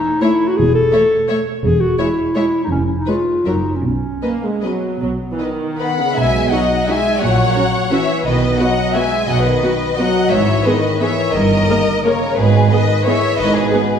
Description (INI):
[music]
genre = classical, orchestral ballroom waltz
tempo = 146-189 BPM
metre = 3/4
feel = rubato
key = B major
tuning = A4 = 440 Hz
[part]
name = mellow clarinet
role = second line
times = 0.0-6.0 s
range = B3 to A4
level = -17 LUFS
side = left 1 dB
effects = none
[part]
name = rich studio violin section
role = melody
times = 0.2-14.0 s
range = B4 to B5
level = -22 LUFS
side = left 3 dB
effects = none
[part]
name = rich studio violin section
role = second line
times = 0.2-14.0 s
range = G#4 to F#5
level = -21 LUFS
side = left 2 dB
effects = none
[part]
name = warm studio viola section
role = accompaniment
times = 0.2-13.8 s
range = C#3 to A#4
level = -22 LUFS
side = right 1 dB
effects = none
[part]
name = rich studio double bass section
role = bass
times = 0.6-13.7 s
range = E1 to B1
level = -22 LUFS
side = right 3 dB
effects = none
[part]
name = warm studio cello section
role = bass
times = 0.6-13.7 s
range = E2 to B2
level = -22 LUFS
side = right 3 dB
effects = none
[part]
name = warm French horn section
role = sustained chords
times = 5.8-14.0 s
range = B2 to B3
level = -20 LUFS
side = left 2 dB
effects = none
[sound]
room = wet concert hall reverb, RT60 1.7 s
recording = recorded in a church or concert hall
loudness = -14 LUFS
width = side -8 dB against mid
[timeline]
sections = 0.0-6.2 A section; 6.2-14.0 B section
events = none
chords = 0.0 A5; 1.6 C#m/E (rootless); 2.7 C#/E#; 3.5 F#; 3.8 B; 7.2 F#/A#; 8.2 B; 10.3 G#m; 11.3 D#/G; 12.4 G#m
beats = 0.22 | 0.57 0.92 1.29 | 1.64 1.99 2.36 | 2.71 3.07 3.46 | 3.83 4.22 4.63 | 5.01 5.40 5.80 | 6.16 6.51 6.87 | 7.21 7.55 7.91 | 8.24 8.59 8.94 | 9.28 9.62 9.98 | 10.31 10.65 11.00 | 11.34 11.68 12.04 | 12.38 12.71 13.06 | 13.39 13.73